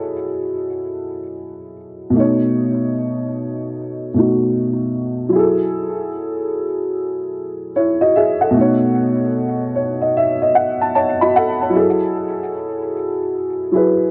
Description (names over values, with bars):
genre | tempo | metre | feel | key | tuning
hip hop | 75 BPM | 4/4 | swing 63% on 16ths | F# dorian | A4 = 442 Hz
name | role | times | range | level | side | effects
dark upright piano | solo | 0.0-14.1 s | B2 to B5 | -18 LUFS | equal | cassette tape, low-pass filter, tape echo
room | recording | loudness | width
moderate small room reverb, RT60 0.5 s | dark, warm production | -18 LUFS | mono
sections
0.0-11.7 A section; 11.7-14.1 B section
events
none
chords
0.0 F#m9; 2.1 B9; 5.3 F#m9; 8.5 B9; 11.7 F#m9